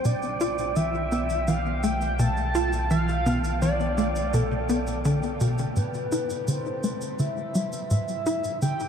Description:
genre	ambient, sequencer-driven space music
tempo	84 BPM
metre	4/4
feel	straight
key	A minor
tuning	A4 = 440 Hz
part	pulse-width lead	melody	0.0-8.9 s	A4 to A5	-29 LUFS	equal	chorus, shimmer reverb, ping-pong delay
part	tight sequencer bass	riff	0.0-8.8 s	A2 to F4	-26 LUFS	equal	wide subtle chorus, shimmer reverb, ping-pong delay
part	warm sub bass	bass	0.0-5.7 s	B1	-30 LUFS	equal	none
part	electronic cabasa and toms	percussion	0.0-8.9 s	none	-37 LUFS	equal	ping-pong delay
part	wind-like tuned noise texture	texture	0.0-5.8 s	G5	-39 LUFS	right 1 dB	built-in reverb, shimmer reverb
room	wet cathedral reverb, RT60 6.5 s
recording	in a vast, echoing space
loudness	-23 LUFS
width	side -7 dB against mid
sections	0.0-5.8 A section; 5.8-8.9 B section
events	filter sweep on analog synth bass 5.8-8.9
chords	0.1 Bm7b5; 5.8 Am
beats	| 0.05 0.76 1.48 2.19 | 2.91 3.62 4.33 5.05 | 5.76 6.48 7.19 7.91 | 8.62

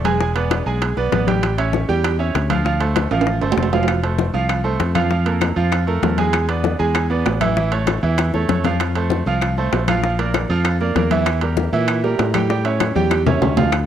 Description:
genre	latin, salsa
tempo	195 BPM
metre	4/4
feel	straight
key	unclear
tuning	A4 = 438 Hz
part	bright baby grand piano	accompaniment	0.0-13.7 s	E3 to G#5	-21 LUFS	right 5 dB	cassette tape
part	fingered electric bass	bass	0.0-13.9 s	E1 to Bb2	-20 LUFS	left 1 dB	none
part	congas	percussion	0.0-13.9 s	none	-25 LUFS	left 9 dB	none
part	timbales	percussion	0.1-13.9 s	none	-24 LUFS	right 7 dB	none
part	bongos	percussion	0.2-13.9 s	none	-26 LUFS	left 9 dB	none
part	claves	percussion	3.9-13.9 s	none	-31 LUFS	left 11 dB	none
room	light reverb, small room ambience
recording	home recording on cassette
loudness	-16 LUFS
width	side -10 dB against mid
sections	0.0-13.7 A section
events	drum fill 3.1-3.9, 8.2-8.8, 13.0-13.7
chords	0.2 E7; 1.4 A7; 2.7 Dm7; 3.9 F; 5.1 Bb5/F; 6.3 E7; 7.6 A; 8.8 F; 10.0 Bb; 11.3 Edim; 12.5 A7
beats	| 0.20 0.51 0.81 1.12 | 1.43 1.74 2.04 2.35 | 2.65 2.96 3.27 3.57 | 3.88 4.19 4.49 4.80 | 5.11 5.42 5.72 6.03 | 6.34 6.64 6.95 7.26 | 7.57 7.87 8.18 8.49 | 8.80 9.11 9.41 9.72 | 10.03 10.34 10.65 10.96 | 11.26 11.57 11.88 12.19 | 12.49 12.80 13.11 13.42 | 13.72

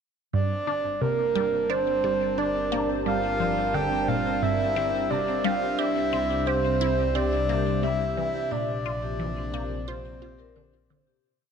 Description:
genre	ambient, sequencer-driven space music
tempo	88 BPM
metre	4/4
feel	straight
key	G dorian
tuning	A4 = 440 Hz
part	breathy flute-like synth lead	melody	0.3-10.9 s	Bb4 to G5	-26 LUFS	right 2 dB	chorus, ping-pong delay
part	sweeping resonant pad	sustained chords	0.3-11.2 s	Bb2 to A5	-30 LUFS	equal	chorus, phaser
part	vibraphone with soft mallets	arpeggios	0.3-11.2 s	D4 to D5	-40 LUFS	left 6 dB	auto-pan, ping-pong delay
part	resonant blip pluck	riff	0.3-11.1 s	G2 to G4	-30 LUFS	equal	phaser, ping-pong delay
part	fat analog bass	bass	0.3-11.2 s	C2	-35 LUFS	left 1 dB	none
part	pulsing gated texture	texture	0.3-11.3 s	C4 to C5	-35 LUFS	right 3 dB	chorus, built-in reverb
room	wet plate reverb, RT60 2.3 s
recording	none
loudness	-23 LUFS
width	side -7 dB against mid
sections	0.3-11.2 A section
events	fade-in on vibraphone 0.3-11.2; fade-in on analog synth bass 0.3-11.2; fade-out 7.6-11.2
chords	0.3 Gm7; 5.8 C7; 8.5 Bbsus2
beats	| 0.33 1.01 1.70 2.38 | 3.06 3.74 4.42 5.11 | 5.79 6.47 7.15 7.83 | 8.52 9.20 9.88 10.56

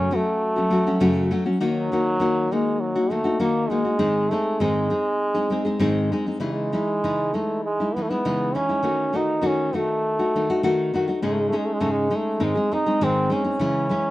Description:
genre	mexican folk, mariachi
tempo	100 BPM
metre	4/4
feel	straight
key	unclear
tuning	A4 = 439 Hz
part	trombone with straight mute	melody	0.0-14.1 s	F#3 to D#4	-24 LUFS	right 1 dB	none
part	nylon-string guitar	accompaniment	0.0-14.1 s	F#2 to G#4	-22 LUFS	left 1 dB	none
room	little or no reverb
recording	dry, close 1970s-style studio recording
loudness	-20 LUFS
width	side -16 dB against mid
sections	0.0-14.1 A section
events	none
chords	0.0 F#m; 1.6 D#m; 4.0 G#; 6.4 C#madd9; 8.8 D#dim; 11.2 G#sus4; 12.4 G#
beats	0.42 1.01 | 1.61 2.21 2.81 3.40 | 4.00 4.60 5.21 5.81 | 6.42 7.03 7.64 8.24 | 8.84 9.44 10.04 10.63 | 11.23 11.82 12.42 13.01 | 13.61

